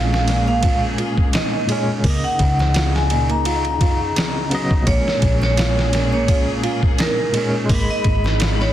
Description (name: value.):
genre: trip hop.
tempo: 85 BPM.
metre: 4/4.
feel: swing 55% on 16ths.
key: Bb phrygian.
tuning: A4 = 442 Hz.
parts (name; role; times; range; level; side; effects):
vibraphone with medium hard mallets; melody; 0.0-8.7 s; Bb4 to Bb5; -23 LUFS; equal; tape echo.
barky tine electric piano; accompaniment; 0.0-8.7 s; Bb2 to Cb6; -24 LUFS; equal; tremolo, tape echo.
muted studio string section; sustained chords; 0.0-8.7 s; Db3 to Cb6; -27 LUFS; left 1 dB; none.
nylon-string guitar; arpeggios; 0.0-8.7 s; Bb2 to F4; -28 LUFS; right 4 dB; tape echo.
fingered electric bass; bass; 0.0-8.7 s; Ab1 to Gb2; -21 LUFS; equal; none.
trip hop sampler-style drum kit; drums; 0.1-8.7 s; hi-hat, kick drum, ride cymbal, snare drum; -20 LUFS; equal; none.
room: light reverb.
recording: dense, heavily limited modern master.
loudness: -16 LUFS.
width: side -12 dB against mid.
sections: 0.0-8.7 A section.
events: none.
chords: 0.0 Bbm7; 2.0 Db9sus4; 4.9 Bbm7; 7.7 Abm.